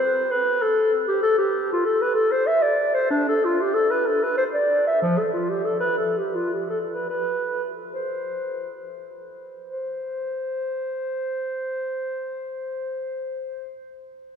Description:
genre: classical, baroque-style fantasia for unaccompanied clarinet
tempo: 66-99 BPM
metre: 3/4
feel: rubato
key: C major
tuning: A4 = 438 Hz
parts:
  - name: dark clarinet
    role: solo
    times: 0.0-13.7 s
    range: F3 to E5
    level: -22 LUFS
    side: equal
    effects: none
room: wet cathedral reverb, RT60 6.2 s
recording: heard from further back in the room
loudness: -21 LUFS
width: side -7 dB against mid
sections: 0.0-9.7 A section; 9.7-14.4 B section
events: slowing down 4.1-9.7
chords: none

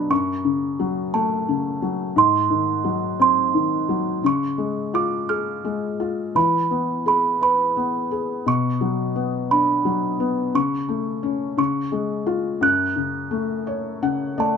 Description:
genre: children's music, lullaby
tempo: 58 BPM (dotted quarters)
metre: 6/8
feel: rubato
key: F# minor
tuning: A4 = 442 Hz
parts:
  - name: music box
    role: melody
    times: 0.0-14.6 s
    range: A5 to F#6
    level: -21 LUFS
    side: right 6 dB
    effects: none
  - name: felt-muted upright piano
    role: accompaniment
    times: 0.0-14.6 s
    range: F#2 to F#5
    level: -22 LUFS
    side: left 4 dB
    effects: none
room: light reverb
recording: none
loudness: -19 LUFS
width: side -6 dB against mid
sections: 0.0-14.6 A section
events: felt piano fill 13.7-14.6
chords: 0.1 F#m; 2.2 G#7; 4.2 C#; 6.4 E; 8.5 Bm; 10.6 A/C#; 11.6 C#; 12.6 F#m

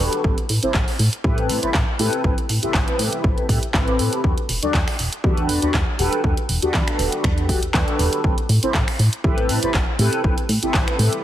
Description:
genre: filtered disco house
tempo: 120 BPM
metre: 4/4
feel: swing 54% on 16ths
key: A dorian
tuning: A4 = 443 Hz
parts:
  - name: mellow synth brass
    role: accompaniment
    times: 0.0-11.2 s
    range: C4 to D5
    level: -23 LUFS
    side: equal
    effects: chorus, phaser, sidechain pumping, low-pass filter
  - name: plucky analog bass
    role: bass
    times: 0.0-11.1 s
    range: E1 to A2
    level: -22 LUFS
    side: equal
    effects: sidechain pumping, low-pass filter
  - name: house drum kit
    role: drums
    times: 0.1-11.2 s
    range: finger snaps, handclaps, hi-hat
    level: -25 LUFS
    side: right 1 dB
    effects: overdrive, sidechain pumping on hats
  - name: electronic kick drum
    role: drums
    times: 0.2-10.8 s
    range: none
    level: -21 LUFS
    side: equal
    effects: overdrive
room: light reverb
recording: heavily compressed radio sound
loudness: -17 LUFS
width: side -12 dB against mid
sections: 0.0-11.2 A section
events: none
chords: 0.2 Am9; 4.2 Em11; 8.2 Am9

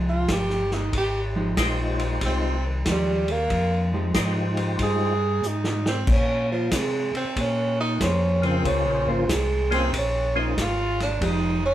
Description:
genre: soul jazz organ trio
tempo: 93 BPM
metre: 4/4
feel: swing 66% on 8ths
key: F minor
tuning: A4 = 440 Hz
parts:
  - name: hollow-body jazz guitar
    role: accompaniment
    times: 0.0-11.6 s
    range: F3 to C5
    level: -28 LUFS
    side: right 1 dB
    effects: none
  - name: mellow tonewheel organ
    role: bass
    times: 0.0-11.7 s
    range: F1 to C3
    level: -26 LUFS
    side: left 1 dB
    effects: overdrive, chorus vibrato, slow rotary speaker
  - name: clear tenor saxophone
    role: melody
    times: 0.1-11.7 s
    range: Eb3 to Ab4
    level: -25 LUFS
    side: right 2 dB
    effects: none
  - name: vintage drum kit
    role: drums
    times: 0.3-11.4 s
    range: crash cymbal, hi-hat, kick drum, ride cymbal, snare drum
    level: -28 LUFS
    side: equal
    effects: none
  - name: percussive tonewheel organ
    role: melody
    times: 1.6-10.6 s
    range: Db3 to C5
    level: -26 LUFS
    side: left 2 dB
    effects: slow rotary speaker, chorus vibrato
room: wet studio reverb, RT60 0.6 s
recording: heard from further back in the room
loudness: -21 LUFS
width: side -12 dB against mid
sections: 0.0-11.7 A section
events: tenor saxophone solo 0.0-11.7; drum fill 5.4-6.1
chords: 0.0 Fm9; 6.1 Bbm9; 11.2 Fm9

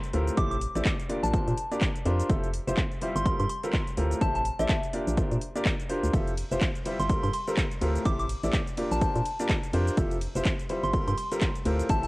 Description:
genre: piano house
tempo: 125 BPM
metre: 4/4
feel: swing 58% on 16ths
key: unclear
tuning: A4 = 441 Hz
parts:
  - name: house drum kit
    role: drums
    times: 0.0-12.1 s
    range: handclaps, hi-hat, ride cymbal, shaker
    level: -36 LUFS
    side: equal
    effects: overdrive, cassette tape
  - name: clear grand piano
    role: riff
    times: 0.1-12.1 s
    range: A2 to D5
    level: -31 LUFS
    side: equal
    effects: sidechain pumping, cassette tape
  - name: organ-like FM bass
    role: bass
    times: 0.1-12.1 s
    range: F1 to Bb2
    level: -29 LUFS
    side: equal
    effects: tube saturation, sidechain pumping
  - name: soft synth bell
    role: melody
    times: 0.4-12.1 s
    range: E5 to D6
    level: -33 LUFS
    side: equal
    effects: chorus, phaser, tape echo
  - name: electronic kick drum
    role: drums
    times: 0.4-12.0 s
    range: none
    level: -28 LUFS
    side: equal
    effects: overdrive, cassette tape
room: light reverb, digital ambience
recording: home recording on cassette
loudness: -25 LUFS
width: side -21 dB against mid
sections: 0.0-12.1 A section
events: none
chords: 0.4 Am7; 1.1 Bb69; 2.3 Fmaj9; 3.3 Gm11; 4.2 Am7; 4.9 Bb69; 6.1 Fmaj9; 7.1 Gm11; 8.1 Am7; 8.8 Bb69; 10.0 Fmaj9; 10.9 Gm11

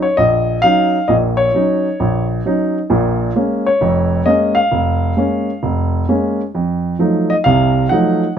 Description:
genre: solo jazz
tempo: 132 BPM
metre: 4/4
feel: swing 66% on 8ths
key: Bb minor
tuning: A4 = 440 Hz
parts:
  - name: warm baby grand piano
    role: solo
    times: 0.0-8.4 s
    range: F1 to Gb5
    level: -13 LUFS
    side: equal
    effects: none
room: light reverb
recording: none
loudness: -13 LUFS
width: side -8 dB against mid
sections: 0.0-8.4 A section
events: none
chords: 0.0 Ebm7; 2.9 Bbm7; 6.5 F7b9

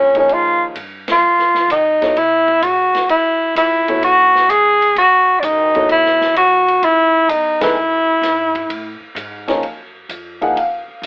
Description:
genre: modal jazz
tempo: 128 BPM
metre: 4/4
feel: swing 69% on 8ths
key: unclear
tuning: A4 = 438 Hz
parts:
  - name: breathy tenor saxophone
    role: melody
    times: 0.0-9.1 s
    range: Db4 to G#4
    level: -11 LUFS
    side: equal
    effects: none
  - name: upright bass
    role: bass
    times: 0.0-11.1 s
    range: F#1 to C3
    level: -35 LUFS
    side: equal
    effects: none
  - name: open jazz drum kit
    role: drums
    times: 0.1-11.1 s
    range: hi-hat, kick drum, ride cymbal, snare drum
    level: -28 LUFS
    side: equal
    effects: none
  - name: warm upright piano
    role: accompaniment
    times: 0.2-11.1 s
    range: F#2 to F#5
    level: -19 LUFS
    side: equal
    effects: none
room: moderate studio reverb, RT60 0.5 s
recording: telephone sound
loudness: -11 LUFS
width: side -30 dB against mid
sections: 0.0-9.6 A section; 9.6-11.1 B section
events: band accent 1.0, 7.5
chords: 0.0 Eb13sus4; 2.2 B13sus4; 9.6 F#maj7(no3)

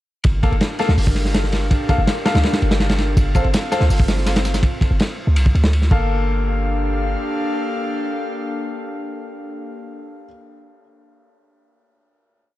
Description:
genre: drum and bass, jungle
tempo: 164 BPM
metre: 4/4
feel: straight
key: G minor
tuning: A4 = 440 Hz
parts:
  - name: airy breathy pad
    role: sustained chords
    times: 0.4-9.8 s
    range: Bb3 to F5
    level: -26 LUFS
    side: left 1 dB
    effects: chorus
  - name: warm 808-style bass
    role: bass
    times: 0.2-7.2 s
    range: G1 to D2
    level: -18 LUFS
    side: equal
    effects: none
  - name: crunchy breakbeat drum kit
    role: drums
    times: 0.2-6.0 s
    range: hi-hat, kick drum, ride cymbal, snare drum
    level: -19 LUFS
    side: equal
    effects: none
  - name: clear grand piano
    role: stabs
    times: 0.4-10.3 s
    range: Bb3 to F5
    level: -26 LUFS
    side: left 2 dB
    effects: vintage 12-bit sampler grit, dub echo
  - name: breakbeat sampler-style drum kit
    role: drums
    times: 3.2-4.6 s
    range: hi-hat, snare drum, tambourine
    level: -31 LUFS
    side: left 1 dB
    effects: high-pass filter on perc, high-pass filter on snare, high-pass filter on hats
room: light reverb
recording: dark, warm production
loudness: -16 LUFS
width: side -15 dB against mid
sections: 0.2-6.1 drop; 6.1-9.0 final hit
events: drop 0.2-6.1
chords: 0.2 Gm9; 3.2 F/G; 5.9 Gm9

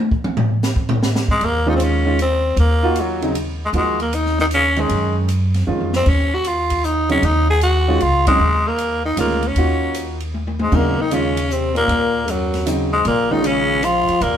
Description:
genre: modal jazz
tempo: 155 BPM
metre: 3/4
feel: swing 66% on 8ths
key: Eb dorian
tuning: A4 = 442 Hz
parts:
  - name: open jazz drum kit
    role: drums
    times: 0.1-14.3 s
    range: crash cymbal, hi-hat, kick drum, ride cymbal, snare drum, toms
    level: -24 LUFS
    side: equal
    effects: none
  - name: growling tenor saxophone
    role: melody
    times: 1.3-14.4 s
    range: Gb3 to Ab4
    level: -18 LUFS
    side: equal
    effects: none
  - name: upright bass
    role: bass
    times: 1.4-14.4 s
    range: Bb1 to Gb2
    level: -20 LUFS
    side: equal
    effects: none
  - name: warm baby grand piano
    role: accompaniment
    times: 1.7-13.8 s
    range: Db3 to Gb4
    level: -22 LUFS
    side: right 2 dB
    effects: none
  - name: warm trombone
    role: second line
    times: 10.6-14.4 s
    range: Gb2 to F3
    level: -23 LUFS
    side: left 5 dB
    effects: none
room: moderate stone room reverb, RT60 1.0 s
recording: band playing live in one room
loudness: -15 LUFS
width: side -9 dB against mid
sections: 0.0-1.4 A section; 1.4-14.4 B section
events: drum solo 0.0-1.4; drum fill 5.7-6.1, 10.3-10.7; band accent 8.2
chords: 0.0 N.C.; 1.4 Ebm11

